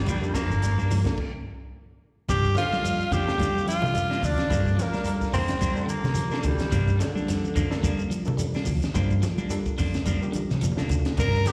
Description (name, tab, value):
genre	afrobeat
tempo	108 BPM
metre	4/4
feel	swing 55% on 16ths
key	G minor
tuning	A4 = 440 Hz
part	raspy baritone saxophone	second line	0.0-1.2, 5.3-8.1 s	D3 to C4	-34 LUFS	equal	plate reverb, slapback echo
part	hollow-body short-scale fingered electric bass	bass	0.0-11.4 s	G1 to G3	-29 LUFS	equal	none
part	electric guitar at the edge of break-up	arpeggios	0.1-11.5 s	C3 to G3	-36 LUFS	equal	lush chorus
part	electric guitar at the edge of break-up	stabs	0.1-11.4 s	F3 to D4	-39 LUFS	equal	warbly pitch drift, plate reverb, slapback echo
part	crunchy breakbeat drum kit	drums	0.1-11.5 s	crash cymbal, hi-hat, kick drum, snare drum	-34 LUFS	equal	none
part	congas	percussion	0.1-11.5 s	none	-36 LUFS	equal	none
part	shekere	percussion	0.1-11.5 s	none	-37 LUFS	equal	none
part	overdriven reed electric piano	accompaniment	0.2-11.5 s	Bb3 to C5	-40 LUFS	equal	phaser, plate reverb
part	raspy tenor saxophone	melody	2.3-5.4, 11.2-11.5 s	Bb3 to Bb4	-30 LUFS	equal	plate reverb, slapback echo, analog delay
part	growling trumpet	second line	2.3-5.3, 11.2-11.5 s	Bb4 to Bb5	-36 LUFS	equal	plate reverb
room	light reverb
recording	live gig heard through the venue's PA, recital hall reverb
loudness	-25 LUFS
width	mono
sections	0.0-2.3 A section; 2.3-11.5 B section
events	stop 1.2-2.3; drum fill 10.3-11.2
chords	0.0 Gm7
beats	| 0.07 0.62 1.18 1.73 | 2.29 2.84 3.39 3.95 | 4.50 5.06 5.61 6.17 | 6.73 7.28 7.84 8.40 | 8.95 9.51 10.07 10.63 | 11.19